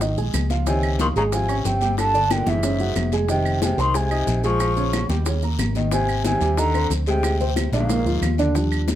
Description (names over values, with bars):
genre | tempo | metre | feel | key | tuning
Afro-Cuban jazz | 183 BPM | 4/4 | straight | unclear | A4 = 440 Hz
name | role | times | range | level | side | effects
dark baby grand piano | accompaniment | 0.0-9.0 s | Bb2 to Eb6 | -25 LUFS | right 2 dB | none
hollow-body short-scale fingered electric bass | bass | 0.0-9.0 s | F1 to Eb2 | -23 LUFS | equal | none
bongos | percussion | 0.0-9.0 s | none | -31 LUFS | left 7 dB | none
congas | percussion | 0.0-9.0 s | none | -30 LUFS | left 3 dB | none
guiro | percussion | 0.0-9.0 s | none | -37 LUFS | left 8 dB | none
maracas | percussion | 0.0-9.0 s | none | -36 LUFS | right 8 dB | none
claves | percussion | 0.3-8.9 s | none | -34 LUFS | right 8 dB | none
breathy mellow concert flute | melody | 0.7-8.4 s | E5 to Db6 | -25 LUFS | right 1 dB | none
breathy tenor saxophone | second line | 0.7-8.3 s | Ab2 to F3 | -27 LUFS | left 4 dB | none
room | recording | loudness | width
moderate small room reverb, RT60 0.6 s | none | -18 LUFS | side -12 dB against mid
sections
0.0-8.6 A section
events
none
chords
0.0 Absus2; 0.7 Dbmaj9; 2.0 G5; 2.6 F#sus2; 3.3 Fm7; 4.6 Bbm7; 5.3 Eb5; 5.9 Abmaj9#11; 7.2 Bb13; 7.9 Bb7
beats
0.01 0.34 | 0.67 0.99 1.32 1.65 | 1.98 2.31 2.63 2.96 | 3.29 3.62 3.95 4.28 | 4.61 4.93 5.26 5.59 | 5.92 6.25 6.58 6.91 | 7.24 7.57 7.89 8.22 | 8.55 8.88